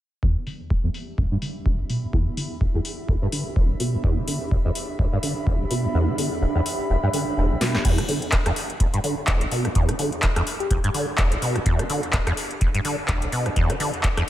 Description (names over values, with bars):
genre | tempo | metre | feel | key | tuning
acid house | 126 BPM | 4/4 | swing 57% on 16ths | E minor | A4 = 442 Hz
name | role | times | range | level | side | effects
deep acid bass | riff | 0.2-14.2 s | E1 to E3 | -24 LUFS | equal | overdrive, ensemble chorus, diffuse ambient delay
electronic kick drum | drums | 0.2-14.1 s | none | -23 LUFS | equal | none
airy breathy pad | texture | 0.2-14.3 s | D4 to B5 | -33 LUFS | right 1 dB | chorus, sidechain pumping
electro analog drum machine | drums | 0.5-14.3 s | crash cymbal, handclaps, hi-hat, rim click, snare drum | -28 LUFS | left 1 dB | low-pass filter on hats, low-pass filter on snare, low-pass filter on cymbals, low-pass filter on room
soft struck synth lead | melody | 10.6-10.8 s | G4 | -33 LUFS | left 5 dB | chorus, phaser, tape echo
room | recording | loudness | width
moderate lush hall reverb, RT60 1.9 s, digital ambience | dreamy mix soaked in reverb | -21 LUFS | side -13 dB against mid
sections
0.2-7.8 A section; 7.8-14.3 B section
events
fade-in on analog synth pad 0.2-7.8; filter sweep on drum 0.2-7.8; filter sweep on acid bass 0.2-7.8; kick drops out 5.9-7.8; drum fill 7.6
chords
0.2 Em7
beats
| 0.23 0.70 1.18 1.66 | 2.13 2.61 3.09 3.56 | 4.04 4.51 4.99 5.47 | 5.94 6.42 6.90 7.37 | 7.85 8.32 8.80 9.28 | 9.75 10.23 10.71 11.18 | 11.66 12.13 12.61 13.09 | 13.56 14.04